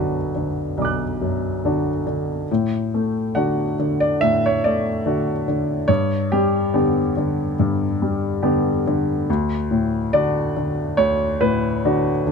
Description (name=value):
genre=neoclassical minimalist piano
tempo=71 BPM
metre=4/4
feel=rubato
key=D major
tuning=A4 = 443 Hz
part: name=clear baby grand piano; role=solo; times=0.0-12.3 s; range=B1 to F#6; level=-18 LUFS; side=left 1 dB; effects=none
room=light reverb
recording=close, detailed microphones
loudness=-18 LUFS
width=side -5 dB against mid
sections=0.0-12.3 A section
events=none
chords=0.0 Bm; 2.5 D/A; 5.9 G; 9.3 D